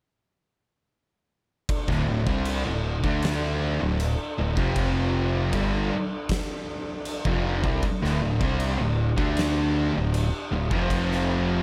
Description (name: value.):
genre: stoner and doom metal.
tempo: 78 BPM.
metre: 4/4.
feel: straight.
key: D minor.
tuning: A4 = 444 Hz.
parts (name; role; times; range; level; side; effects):
percussive tonewheel organ; sustained chords; 1.7-11.6 s; D4 to G5; -38 LUFS; equal; slow rotary speaker, chorus vibrato.
oversized low-tuned drum kit; drums; 1.7-11.2 s; crash cymbal, kick drum, snare drum; -32 LUFS; equal; none.
fuzz guitar; riff; 1.9-11.6 s; D2 to D4; -33 LUFS; equal; distortion.
thick fuzz guitar; riff; 1.9-11.6 s; D2 to D4; -31 LUFS; equal; distortion.
thick fuzz guitar; riff; 1.9-11.6 s; D2 to D4; -32 LUFS; equal; distortion.
growling picked electric bass; bass; 1.9-11.6 s; D1 to D2; -31 LUFS; equal; overdrive.
room: light reverb, studio reverb.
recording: none.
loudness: -25 LUFS.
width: mono.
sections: 1.7-11.6 A section.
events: none.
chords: 1.7 D5; 4.6 F5; 5.5 Dm; 10.7 F5.